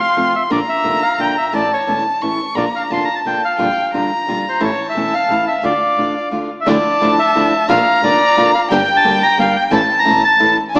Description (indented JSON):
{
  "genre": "tango",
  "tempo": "176 BPM",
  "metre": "3/4",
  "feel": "rubato",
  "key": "D minor",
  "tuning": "A4 = 441 Hz",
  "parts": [
    { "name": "bandoneon", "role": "melody", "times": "0.0-10.8 s", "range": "C5 to C6", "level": "-15 LUFS", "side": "equal", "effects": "none" },
    { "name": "dark violin", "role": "second line", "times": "0.0-10.8 s", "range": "F5 to C#6", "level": "-18 LUFS", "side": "left 1 dB", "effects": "none" },
    { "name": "nylon-string guitar", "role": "accompaniment", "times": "0.2-10.8 s", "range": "C3 to G4", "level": "-20 LUFS", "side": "equal", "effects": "none" },
    { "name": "clear double bass", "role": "bass", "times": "0.2-10.8 s", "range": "E1 to F2", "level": "-27 LUFS", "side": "equal", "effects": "none" },
    { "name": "rich symphonic string section", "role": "stabs", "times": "6.7-10.8 s", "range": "C#4 to Bb4", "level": "-26 LUFS", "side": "equal", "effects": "none" }
  ],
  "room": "wet scoring stage reverb, RT60 1.8 s",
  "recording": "small speaker sound",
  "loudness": "-12 LUFS",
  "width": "side -27 dB against mid",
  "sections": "0.0-6.7 A section; 6.7-10.8 B section",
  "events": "none",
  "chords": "0.0 F; 0.5 Bb; 1.5 A; 2.6 Bb; 3.6 Gm7/Bb; 4.6 A; 5.6 Dm; 6.7 Dmadd9; 7.7 Bb; 8.7 Gm; 9.7 A"
}